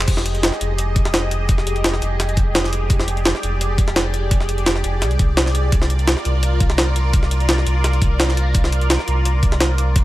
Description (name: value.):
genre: liquid drum and bass.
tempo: 170 BPM.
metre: 4/4.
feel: straight.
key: F dorian.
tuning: A4 = 440 Hz.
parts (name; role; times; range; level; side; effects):
lush unison pad; sustained chords; 0.0-10.0 s; F4 to Eb5; -25 LUFS; equal; chorus, phaser, sidechain pumping.
sub bass with octave; bass; 0.0-10.0 s; F1 to C2; -19 LUFS; equal; none.
electronic kick drum; drums; 0.1-10.0 s; none; -17 LUFS; equal; none.
jungle sampler-style drum kit; drums; 0.1-10.0 s; crash cymbal, hi-hat, snare drum; -21 LUFS; equal; none.
room: digital ambience.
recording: none.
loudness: -16 LUFS.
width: side -16 dB against mid.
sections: 0.1-10.0 A section.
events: drop 0.1-10.0.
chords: 0.1 Fm9; 5.7 C9sus4.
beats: | 0.08 0.43 0.78 1.14 | 1.49 1.84 2.19 2.55 | 2.90 3.25 3.61 3.96 | 4.31 4.67 5.02 5.37 | 5.72 6.08 6.43 6.78 | 7.14 7.49 7.84 8.20 | 8.55 8.90 9.25 9.61 | 9.96.